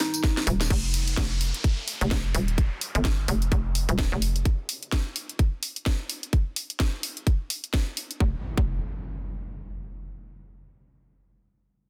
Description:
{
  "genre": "bass house",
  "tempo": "128 BPM",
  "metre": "4/4",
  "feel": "swing 58% on 16ths",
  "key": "unclear",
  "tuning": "A4 = 441 Hz",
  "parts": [
    { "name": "soft struck synth lead", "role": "melody", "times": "0.0-0.5 s", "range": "Eb4", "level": "-34 LUFS", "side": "equal", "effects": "chorus, delay" },
    { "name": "dark analog pad", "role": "sustained chords", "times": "0.0-0.7 s", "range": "G3 to Bb4", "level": "-51 LUFS", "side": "equal", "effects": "none" },
    { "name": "garage drum kit", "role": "drums", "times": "0.0-8.2 s", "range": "crash cymbal, hi-hat, snare drum, tambourine", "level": "-33 LUFS", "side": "equal", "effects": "none" },
    { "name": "electronic kick drum", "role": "drums", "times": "0.2-8.7 s", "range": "none", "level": "-26 LUFS", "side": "equal", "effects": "none" },
    { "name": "hollow knocking FM bass", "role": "bass", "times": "0.5-4.4, 8.2-8.8 s", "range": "Eb1 to G1", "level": "-28 LUFS", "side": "equal", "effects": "tube saturation, sidechain pumping" },
    { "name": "downlifter and impact", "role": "sound effects", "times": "0.7-4.5, 8.4-10.1 s", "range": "none", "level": "-39 LUFS", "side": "equal", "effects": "none" }
  ],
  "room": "digital ambience",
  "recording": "dense, heavily limited modern master",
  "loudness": "-27 LUFS",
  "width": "mono",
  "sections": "0.7-8.2 A section; 8.2-10.1 B section",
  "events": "drum fill 0.0-0.7",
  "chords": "0.0 Eb; 0.7 N.C."
}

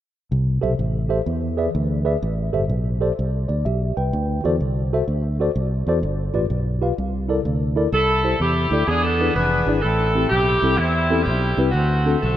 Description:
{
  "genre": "uptempo gospel",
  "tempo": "126 BPM",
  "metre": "4/4",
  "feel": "swing 65% on 8ths",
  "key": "C major",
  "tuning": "A4 = 439 Hz",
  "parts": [
    { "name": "mellow tine electric piano", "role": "accompaniment", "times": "0.3-12.4 s", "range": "G2 to G5", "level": "-23 LUFS", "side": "left 1 dB", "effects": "medium stereo tremolo" },
    { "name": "fingered electric bass", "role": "bass", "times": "0.3-12.4 s", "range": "F1 to E2", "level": "-22 LUFS", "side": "equal", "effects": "none" },
    { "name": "bright saxophone section", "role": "melody", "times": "7.9-12.4 s", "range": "G3 to B4", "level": "-20 LUFS", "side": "equal", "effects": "none" }
  ],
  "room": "moderate lush hall reverb, RT60 2.7 s",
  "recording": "rough home demo mix",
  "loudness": "-18 LUFS",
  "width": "side -12 dB against mid",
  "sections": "0.3-7.9 A section; 7.9-12.4 B section",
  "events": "none",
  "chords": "0.3 C6; 1.3 E7; 2.2 Am7; 4.1 D7; 6.0 G7; 7.0 C13; 7.9 C6; 8.9 E7; 9.8 Am7; 11.7 D7"
}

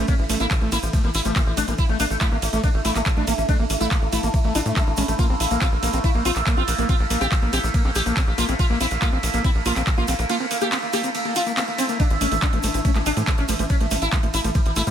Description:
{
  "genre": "psychedelic trance",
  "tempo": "141 BPM",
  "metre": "4/4",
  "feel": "straight",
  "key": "unclear",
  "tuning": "A4 = 440 Hz",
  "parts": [
    { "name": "sitar", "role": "melody", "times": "0.0-14.9 s", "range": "E3 to G4", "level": "-26 LUFS", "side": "left 1 dB", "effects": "phaser, sidechain pumping, digital delay" },
    { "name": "overtone-sweeping drone", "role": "sustained chords", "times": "0.0-14.9 s", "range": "A3 to E4", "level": "-29 LUFS", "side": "right 2 dB", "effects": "chorus, built-in reverb, sidechain pumping" },
    { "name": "screaming distorted acid line", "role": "riff", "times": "0.0-14.9 s", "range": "G#3 to E4", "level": "-28 LUFS", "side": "moving between left 7 dB and right 7 dB", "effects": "distortion, chorus, auto-pan, sidechain pumping, digital delay" },
    { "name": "tight sequencer bass", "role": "bass", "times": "0.0-14.9 s", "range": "A1 to A2", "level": "-25 LUFS", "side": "equal", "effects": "none" },
    { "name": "electronic kick drum", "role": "drums", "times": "0.1-14.6 s", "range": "none", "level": "-20 LUFS", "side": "equal", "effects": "none" },
    { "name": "techno drum kit", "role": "drums", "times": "0.1-14.9 s", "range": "handclaps, hi-hat, ride cymbal", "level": "-28 LUFS", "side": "right 2 dB", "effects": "none" },
    { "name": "egg shaker", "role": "percussion", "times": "0.1-14.9 s", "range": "none", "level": "-34 LUFS", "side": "equal", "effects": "none" }
  ],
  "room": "little or no reverb",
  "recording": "none",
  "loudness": "-19 LUFS",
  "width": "side -9 dB against mid",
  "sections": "0.0-12.0 A section; 12.0-14.9 A section",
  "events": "drop 0.0-12.0, 12.0-14.9",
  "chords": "0.0 A5; 5.2 Gm69/Bb (rootless); 12.0 A5"
}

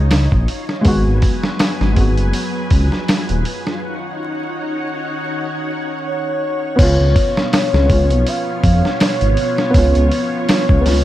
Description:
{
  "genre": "trip hop",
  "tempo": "81 BPM",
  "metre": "4/4",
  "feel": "swing 56% on 16ths",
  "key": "unclear",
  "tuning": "A4 = 439 Hz",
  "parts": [
    { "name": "felt-muted upright piano", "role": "accompaniment", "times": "0.0-11.0 s", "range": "Gb3 to Gb4", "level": "-22 LUFS", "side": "equal", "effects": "harmonic tremolo, tape echo" },
    { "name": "string machine, cellos", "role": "sustained chords", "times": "0.0-11.0 s", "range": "Gb3 to Ab5", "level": "-23 LUFS", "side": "equal", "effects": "ensemble chorus" },
    { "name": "dark detuned saw bass", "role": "bass", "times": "0.0-11.0 s", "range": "Eb1 to F2", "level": "-15 LUFS", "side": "equal", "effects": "none" },
    { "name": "backwards swelling texture", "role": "texture", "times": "0.0-3.8 s", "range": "F4", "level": "-36 LUFS", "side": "equal", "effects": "none" },
    { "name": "dusty soul sampler-style drum kit", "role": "drums", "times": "0.1-11.0 s", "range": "crash cymbal, hi-hat, kick drum, snare drum", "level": "-17 LUFS", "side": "equal", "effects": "studio reverb" },
    { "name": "pure breathy sine lead", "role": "melody", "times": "6.1-11.0 s", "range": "Db5 to F5", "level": "-20 LUFS", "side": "equal", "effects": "chorus, phaser, tape echo" }
  ],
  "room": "little or no reverb",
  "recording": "vinyl crackle",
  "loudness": "-14 LUFS",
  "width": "side -14 dB against mid",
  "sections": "0.0-6.8 A section; 6.8-11.0 B section",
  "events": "break 3.8-6.8",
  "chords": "0.0 Ebm7; 0.9 Abm7; 3.8 Ebm7; 6.8 Db7"
}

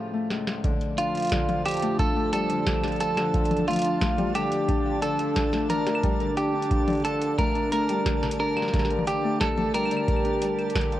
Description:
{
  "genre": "IDM",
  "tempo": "89 BPM",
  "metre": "4/4",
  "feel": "straight",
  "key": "D minor",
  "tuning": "A4 = 440 Hz",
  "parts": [
    { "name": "Celtic harp", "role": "arpeggios", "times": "0.0-11.0 s", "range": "Db2 to D4", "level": "-29 LUFS", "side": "left 4 dB", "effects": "ping-pong delay" },
    { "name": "booming analog drum machine", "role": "drums", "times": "0.3-11.0 s", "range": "claves, hi-hat, snare drum, toms", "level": "-31 LUFS", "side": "left 1 dB", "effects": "none" },
    { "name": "warm analog pad", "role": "sustained chords", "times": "0.6-11.0 s", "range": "F3 to G4", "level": "-31 LUFS", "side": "right 1 dB", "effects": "chorus" },
    { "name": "electronic kick drum", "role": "drums", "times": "0.6-10.9 s", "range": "none", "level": "-28 LUFS", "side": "right 1 dB", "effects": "none" },
    { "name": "twinkling granular texture", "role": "texture", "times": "1.6-11.0 s", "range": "A5", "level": "-40 LUFS", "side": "right 3 dB", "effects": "built-in reverb" },
    { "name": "clean electric guitar", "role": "melody", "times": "1.0-11.0 s", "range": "F4 to Bb4", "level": "-27 LUFS", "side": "right 1 dB", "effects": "ping-pong delay" }
  ],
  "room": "light reverb",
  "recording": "worn, warbling old tape, cassette tape, warbly pitch drift",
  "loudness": "-22 LUFS",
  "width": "side -13 dB against mid",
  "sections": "0.6-11.0 A section",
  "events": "break 0.0-0.6; drum fill 0.3-0.6",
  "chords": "0.0 Bbm (rootless); 0.6 Dm"
}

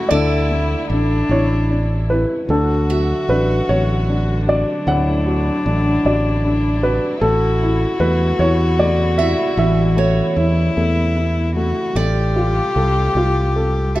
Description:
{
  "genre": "acoustic folk-pop ballad",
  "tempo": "50 BPM (dotted quarters)",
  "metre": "6/8",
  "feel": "straight",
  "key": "D major",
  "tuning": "A4 = 441 Hz",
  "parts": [
    { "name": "warm upright piano", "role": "melody", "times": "0.0-14.0 s", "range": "A2 to F#5", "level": "-20 LUFS", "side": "equal", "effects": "none" },
    { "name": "warm cello", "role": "second line", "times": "0.0-14.0 s", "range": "D4 to A4", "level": "-22 LUFS", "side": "left 1 dB", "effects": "none" },
    { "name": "dark studio string section", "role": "sustained chords", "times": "0.0-14.0 s", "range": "C3 to F#4", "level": "-29 LUFS", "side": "equal", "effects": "none" },
    { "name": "picked acoustic archtop guitar", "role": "arpeggios", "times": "0.1-4.1, 9.2-14.0 s", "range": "C#5 to E5", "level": "-27 LUFS", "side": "right 5 dB", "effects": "none" },
    { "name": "fingered electric bass", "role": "bass", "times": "0.1-14.0 s", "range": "A1 to E2", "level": "-18 LUFS", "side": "equal", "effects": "none" }
  ],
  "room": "light reverb",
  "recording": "dark, warm production",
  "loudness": "-15 LUFS",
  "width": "side -16 dB against mid",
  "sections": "0.0-2.5 A section; 2.5-14.0 A section",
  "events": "none",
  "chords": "0.1 Dsus2; 2.5 D; 7.2 A; 12.0 Fadd9/A"
}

